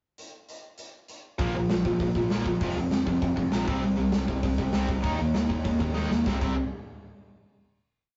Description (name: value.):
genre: punk rock.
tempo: 198 BPM.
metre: 4/4.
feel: straight.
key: unclear.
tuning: A4 = 441 Hz.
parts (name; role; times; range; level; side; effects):
big rock drum kit; drums; 0.2-6.5 s; crash cymbal, hi-hat, kick drum, snare drum; -33 LUFS; equal; vintage 12-bit sampler grit.
sludgy distorted guitar; riff; 1.4-6.5 s; F2 to Eb4; -34 LUFS; equal; none.
tight distorted guitar; riff; 1.4-6.5 s; F2 to Eb4; -30 LUFS; equal; distortion.
overdriven picked electric bass; bass; 1.4-6.6 s; F1 to Eb2; -35 LUFS; equal; none.
room: wet small room reverb, RT60 0.5 s.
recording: rough rehearsal-room recording, warm saturation, cassette tape, nothing above 7.8 kHz.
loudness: -27 LUFS.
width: mono.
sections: 0.2-1.4 pickup bar; 1.4-6.3 verse; 6.3-7.5 final chord.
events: drum fill 6.0-6.3.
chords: 0.2 N.C.; 1.4 Bb5; 2.6 F5; 3.7 C5; 5.0 Eb5; 6.3 C5.